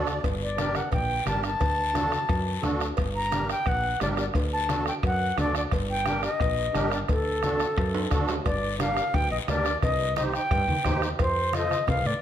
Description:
latin, cumbia; 175 BPM; 4/4; straight; G harmonic minor, G minor from 8.5 s; A4 = 439 Hz
musette accordion; accompaniment; 0.0-11.8 s; D4 to D5; -32 LUFS; right 2 dB
woody fretless electric bass; bass; 0.0-12.1 s; G1 to A2; -30 LUFS; equal
bombo; percussion; 0.1-12.1 s; -30 LUFS; equal
congas; percussion; 0.1-12.2 s; -36 LUFS; left 2 dB
guiro; percussion; 0.1-12.2 s; -40 LUFS; left 7 dB
cowbell and timbales; percussion; 0.2-12.1 s; -36 LUFS; right 3 dB
concert flute; melody; 0.4-12.2 s; A4 to Bb5; -28 LUFS; left 1 dB
moderate large studio reverb, RT60 1.3 s; -23 LUFS; side -10 dB against mid
0.0-8.5 A section; 8.5-12.2 B section
accordion fill 0.0; drum fill 7.9-8.5
0.2 Gm; 1.6 D; 3.0 Gm; 4.4 D; 5.7 Gm; 7.1 D; 8.5 Gm; 9.8 Cm; 11.2 F
| 0.24 0.58 0.93 1.27 | 1.61 1.95 2.29 2.64 | 2.98 3.32 3.67 4.01 | 4.35 4.69 5.04 5.38 | 5.72 6.06 6.41 6.75 | 7.09 7.43 7.78 8.12 | 8.46 8.80 9.14 9.49 | 9.83 10.17 10.51 10.86 | 11.20 11.54 11.88

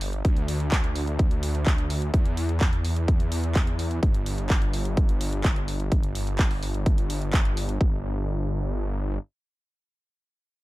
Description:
EDM, festival progressive house; 127 BPM; 4/4; straight; A4 = 440 Hz
wide detuned saw bass; bass; 0.0-9.2 s; G1 to E2; -27 LUFS; equal; chorus, sidechain pumping
big-room dance drum kit; drums; 0.0-7.8 s; handclaps, hi-hat; -32 LUFS; right 1 dB
electronic kick drum; drums; 0.2-7.9 s; -22 LUFS; equal
little or no reverb; dark, warm production; -22 LUFS; side -18 dB against mid
0.0-7.8 A section; 7.8-10.6 B section
drop 0.0-7.8
| 0.25 0.72 1.19 1.67 | 2.14 2.61 3.08 3.55 | 4.03 4.50 4.97 5.44 | 5.92 6.39 6.86 7.33 | 7.81 8.28 8.75

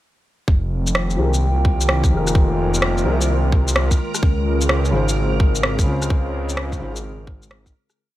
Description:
future garage; 128 BPM; 4/4; swing 66% on 16ths; F minor; A4 = 442 Hz
warbly tape-like pad; sustained chords; 0.5-8.0 s; Db3 to G5; -26 LUFS; left 1 dB; chorus, built-in reverb, sidechain pumping
swelling detuned saw bass; bass; 0.5-7.7 s; F1 to Db2; -20 LUFS; equal
electronic kick drum; drums; 0.5-7.7 s; -17 LUFS; equal; overdrive, small room reverb
backwards swelling texture; texture; 1.6-8.0 s; Bb4; -31 LUFS; equal; built-in reverb
electronic shaker and rim click; drums; 0.9-8.0 s; -22 LUFS; equal; overdrive, small room reverb
felt-muted upright piano; accompaniment; 1.2-6.9 s; Db3 to C5; -27 LUFS; left 2 dB; sidechain pumping, low-pass filter, tape echo
light reverb; -16 LUFS; side -15 dB against mid
0.5-8.0 groove
filter sweep on felt piano 0.5-8.0; fade-out 5.5-8.0
0.5 Fm11; 4.2 Dbmaj7
| 0.48 0.95 1.42 1.89 | 2.35 2.82 3.29 3.76 | 4.23 4.70 5.17 5.63 | 6.10 6.57 7.04 7.51

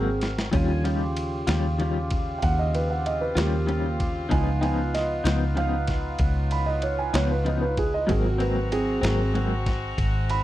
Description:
slow blues; 64 BPM (dotted quarters); 12/8; straight; A4 = 441 Hz
dark baby grand piano; accompaniment; 0.0-10.4 s; F3 to Cb6; -28 LUFS; right 3 dB
electric guitar through a small old amp; accompaniment; 0.0-9.6 s; Ab2 to F4; -28 LUFS; left 3 dB; tremolo
tonewheel organ; sustained chords; 0.0-10.4 s; Db3 to Bb5; -34 LUFS; equal; slow rotary speaker
vintage muted fingered electric bass; bass; 0.0-10.4 s; Ab1 to Eb2; -26 LUFS; equal
boom bap sampler-style drum kit; drums; 0.2-10.4 s; kick drum, ride cymbal, snare drum; -29 LUFS; equal
bright saxophone section; sustained chords; 0.5-10.4 s; G3 to Gb4; -36 LUFS; left 1 dB
little or no reverb; dry, close 1970s-style studio recording; -22 LUFS; side -14 dB against mid
0.0-10.4 A section
grand piano solo 0.0-10.4; drum fill 0.2-0.5
0.0 Ab9; 0.5 Eb9; 4.3 Db9; 8.1 Ab9
| 0.53 1.48 2.42 3.37 | 4.31 5.25 6.20 7.14 | 8.09 9.03 9.98

